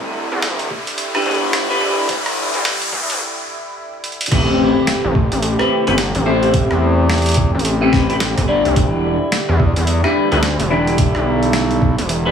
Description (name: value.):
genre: glitch hop.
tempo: 108 BPM.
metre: 4/4.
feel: swing 61% on 16ths.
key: A minor.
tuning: A4 = 444 Hz.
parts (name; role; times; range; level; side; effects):
warm analog pad; sustained chords; 0.0-12.3 s; C3 to G4; -25 LUFS; right 1 dB; chorus, sidechain pumping.
gritty driven synth bass; bass; 0.0-12.3 s; E1 to E2; -18 LUFS; equal; high-pass filter.
riser and impact; sound effects; 0.0-6.5 s; none; -24 LUFS; equal; none.
boom bap sampler-style drum kit; drums; 0.4-12.2 s; crash cymbal, hi-hat, rim click, snare drum; -23 LUFS; right 1 dB; high-pass filter on hats, high-pass filter on snare, high-pass filter on cymbals.
electronic kick drum; drums; 0.7-12.0 s; none; -17 LUFS; equal; none.
clean electric guitar; stabs; 1.1-12.3 s; C4 to D5; -19 LUFS; left 2 dB; phaser, sidechain pumping, dub echo.
room: light reverb, digital ambience.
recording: high-pass filter, studio ambience.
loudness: -14 LUFS.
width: side -7 dB against mid.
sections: 0.0-4.3 A section; 4.3-12.3 B section.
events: build-up 0.0-4.3; riser 0.0-3.2; filter sweep on clean electric guitar 0.0-4.3; break 3.2-4.3; drum fill 4.0; drop 4.3-12.3; impact 4.3-6.5.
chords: 0.0 Em7; 4.3 Am7; 8.8 Em7.